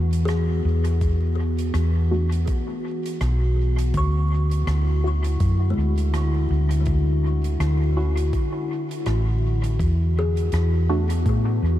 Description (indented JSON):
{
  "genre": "ambient dub",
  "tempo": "82 BPM",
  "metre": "4/4",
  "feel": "swing 57% on 16ths",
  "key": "E mixolydian",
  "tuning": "A4 = 440 Hz",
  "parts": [
    { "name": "warbly tape-like pad", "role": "sustained chords", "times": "0.0-11.8 s", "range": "D3 to F#4", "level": "-29 LUFS", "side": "left 1 dB", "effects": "chorus, built-in reverb" },
    { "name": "kalimba", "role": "arpeggios", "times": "0.0-11.8 s", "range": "G#3 to C#6", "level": "-33 LUFS", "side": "left 4 dB", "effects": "ping-pong delay" },
    { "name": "hollow-body short-scale fingered electric bass", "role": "bass", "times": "0.0-11.8 s", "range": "A1 to A2", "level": "-20 LUFS", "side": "equal", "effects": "none" },
    { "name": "soft-mallet drum kit", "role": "drums", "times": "0.1-11.4 s", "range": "hi-hat, rim click", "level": "-38 LUFS", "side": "right 1 dB", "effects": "dub echo" },
    { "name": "electronic kick drum", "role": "drums", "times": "1.0-11.4 s", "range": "none", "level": "-26 LUFS", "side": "equal", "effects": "none" },
    { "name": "filtered dub chord stab", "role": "stabs", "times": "2.1-11.1 s", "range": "A3 to F#4", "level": "-33 LUFS", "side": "right 1 dB", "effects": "phaser, dub echo" }
  ],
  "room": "light reverb, studio ambience",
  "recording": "vinyl crackle",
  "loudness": "-20 LUFS",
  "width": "side -13 dB against mid",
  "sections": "0.0-11.8 A section",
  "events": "none",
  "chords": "0.0 E5; 3.9 Dmaj7; 9.8 E7sus4",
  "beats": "0.28 | 1.01 1.75 2.48 3.21 | 3.94 4.67 5.41 6.14 | 6.87 7.60 8.33 9.06 | 9.79 10.53 11.26"
}